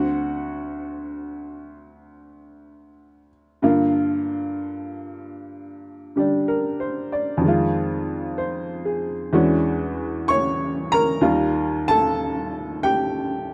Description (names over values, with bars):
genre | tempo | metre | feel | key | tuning
solo jazz | 63 BPM | 4/4 | swing 68% on 8ths | unclear | A4 = 437 Hz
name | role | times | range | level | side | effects
clear upright piano | solo | 0.0-13.5 s | D2 to C#6 | -23 LUFS | equal | none
room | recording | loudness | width
light reverb | dark, warm production | -23 LUFS | mono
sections
0.0-13.5 A section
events
none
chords
0.0 D7; 3.6 Gm7; 7.4 Fm7; 9.3 E13; 11.2 Ebadd9